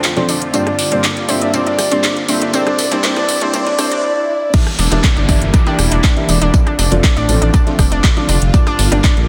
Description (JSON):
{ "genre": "progressive house", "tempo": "120 BPM", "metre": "4/4", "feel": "straight", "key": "unclear", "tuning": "A4 = 440 Hz", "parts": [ { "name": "supersaw pad", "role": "sustained chords", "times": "0.0-9.3 s", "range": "F2 to F4", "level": "-27 LUFS", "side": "equal", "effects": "phaser, vintage 12-bit sampler grit, sidechain pumping" }, { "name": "breakbeat sampler-style drum kit", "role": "drums", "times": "0.0-9.2 s", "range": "hi-hat, snare drum, tambourine", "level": "-29 LUFS", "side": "equal", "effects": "none" }, { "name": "house drum kit", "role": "drums", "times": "0.0-9.3 s", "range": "crash cymbal, handclaps, hi-hat, rim click", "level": "-22 LUFS", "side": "equal", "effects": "sidechain pumping on hats, sidechain pumping on cymbals" }, { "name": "riser, swell and downlifter", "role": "sound effects", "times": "0.7-8.5 s", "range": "none", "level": "-30 LUFS", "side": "equal", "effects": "none" }, { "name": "analog pluck", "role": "arpeggios", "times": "0.2-9.2 s", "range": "C4 to D4", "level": "-23 LUFS", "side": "equal", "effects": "chorus, sidechain pumping, dub echo" }, { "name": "felt-muted upright piano", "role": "stabs", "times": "0.2-9.0 s", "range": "G2 to G5", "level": "-23 LUFS", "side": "equal", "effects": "sidechain pumping, dub echo" }, { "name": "soft octave-layered synth lead", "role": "melody", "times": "0.5-4.5 s", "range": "D5 to E5", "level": "-22 LUFS", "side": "equal", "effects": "chorus, sidechain pumping, tape echo" }, { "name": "electronic kick drum", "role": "drums", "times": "4.5-9.1 s", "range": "none", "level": "-14 LUFS", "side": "equal", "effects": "none" }, { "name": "dark detuned saw bass", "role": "bass", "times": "4.8-9.2 s", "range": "E1 to Bb1", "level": "-18 LUFS", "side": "equal", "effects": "sidechain pumping" } ], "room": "moderate recital hall reverb, RT60 1.4 s, digital ambience", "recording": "dense, heavily limited modern master, high-pass filter", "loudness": "-14 LUFS", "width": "mono", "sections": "0.0-4.5 A section; 4.5-9.3 B section", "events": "build-up 0.0-4.5; swell 3.5-4.5; drop 4.5-9.3", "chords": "0.0 Dm7/F; 0.5 Gm7; 2.5 C7; 4.5 Em7b5; 6.5 Dm7/F; 8.5 Gm7" }